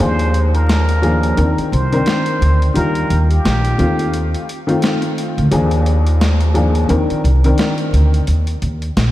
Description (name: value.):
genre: hip hop, boom-bap hip-hop.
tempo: 87 BPM.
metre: 4/4.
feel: swing 59% on 16ths.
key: unclear.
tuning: A4 = 440 Hz.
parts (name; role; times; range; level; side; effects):
trumpet with plunger mute; melody; 0.0-4.3 s; G4 to C5; -22 LUFS; right 1 dB; ping-pong delay.
dark upright piano; accompaniment; 0.0-8.2 s; Eb2 to Bb4; -18 LUFS; left 1 dB; cassette tape.
upright bass; bass; 0.0-9.1 s; Bb1 to Eb2; -14 LUFS; equal; none.
boom bap sampler-style drum kit; drums; 0.0-9.1 s; hi-hat, snare drum; -22 LUFS; equal; none.
room: moderate lush hall reverb, RT60 3.0 s.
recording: dreamy mix soaked in reverb, vinyl crackle.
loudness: -13 LUFS.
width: side -15 dB against mid.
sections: 0.0-9.1 A section.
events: break 0.0-9.1.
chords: 0.0 Bb7/Eb; 1.4 Cm9; 2.8 Ebmaj9; 3.8 F7/Eb; 5.5 Bb7/Eb; 6.9 Cm9; 8.3 Eb5.